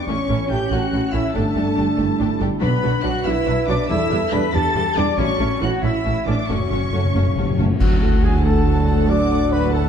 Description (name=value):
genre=cinematic, heroic adventure film score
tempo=94 BPM (dotted quarters)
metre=6/8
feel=straight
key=unclear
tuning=A4 = 441 Hz
part: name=rich symphonic violin section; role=melody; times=0.0-9.9 s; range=F#5 to B6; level=-30 LUFS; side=left 2 dB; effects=none
part: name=concert flute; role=second line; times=0.0-9.9 s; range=A4 to D6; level=-31 LUFS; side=left 2 dB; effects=none
part: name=mellow French horn section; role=sustained chords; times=0.0-9.9 s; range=C#4 to D5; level=-27 LUFS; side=left 4 dB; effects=none
part: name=mellow trombone section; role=sustained chords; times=0.0-9.9 s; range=A2 to D4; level=-27 LUFS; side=right 3 dB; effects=none
part: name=rich chamber violin section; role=second line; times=0.1-9.9 s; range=E4 to D6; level=-34 LUFS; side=left 2 dB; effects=none
part: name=rich symphonic viola section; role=accompaniment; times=0.1-9.9 s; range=F#3 to A4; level=-26 LUFS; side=equal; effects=none
part: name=mellow trumpet section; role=stabs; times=0.1-9.9 s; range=A4 to B5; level=-28 LUFS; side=left 2 dB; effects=none
part: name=rich studio cello section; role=bass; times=0.1-9.9 s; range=D2 to B4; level=-26 LUFS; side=right 3 dB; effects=none
part: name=rich symphonic double bass section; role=bass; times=0.1-9.9 s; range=F#1 to E2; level=-22 LUFS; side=right 2 dB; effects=none
part: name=timpani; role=percussion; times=2.6-3.2, 6.5-7.8 s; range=F#2 to B2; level=-25 LUFS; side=left 3 dB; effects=none
part: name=cymbal swell, clash cymbals and concert bass drum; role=percussion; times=5.2-8.6 s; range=none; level=-22 LUFS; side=left 1 dB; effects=none
part: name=clear oboe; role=second line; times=7.8-9.9 s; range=F#4 to D5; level=-34 LUFS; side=equal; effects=none
part: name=mellow tuba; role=bass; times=7.8-9.9 s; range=D2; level=-24 LUFS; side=right 3 dB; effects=none
room=wet scoring stage reverb, RT60 2.0 s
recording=dark, warm production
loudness=-16 LUFS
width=side -8 dB against mid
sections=0.0-7.8 A section; 7.8-9.9 B section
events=timpani fill 6.5-7.8; band accent 7.8-8.2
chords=0.1 A; 1.3 Gsus2; 2.6 Bm; 3.9 Em7; 5.2 A; 6.5 F#m; 7.8 D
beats=| 0.08 0.71 | 1.34 1.98 | 2.62 3.26 | 3.90 4.54 | 5.18 5.83 | 6.49 7.15 | 7.81 8.46 | 9.10 9.75